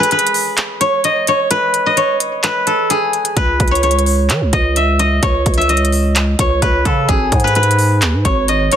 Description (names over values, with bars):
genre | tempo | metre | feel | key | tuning
hip hop, trap | 129 BPM | 4/4 | half-time | unclear | A4 = 438 Hz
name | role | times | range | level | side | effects
steel-string zither | melody | 0.0-8.8 s | G#4 to E5 | -15 LUFS | equal | low-pass filter
trap drum kit | drums | 0.0-8.8 s | handclaps, hi-hat, kick drum | -18 LUFS | equal | none
growling 808-style bass | bass | 3.4-8.7 s | G#1 to E3 | -16 LUFS | equal | none
room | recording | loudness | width
studio ambience | dense, heavily limited modern master | -12 LUFS | side -9 dB against mid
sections
0.0-8.8 A section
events
break 0.0-3.4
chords
0.0 N.C.; 3.4 C#5; 7.1 G#m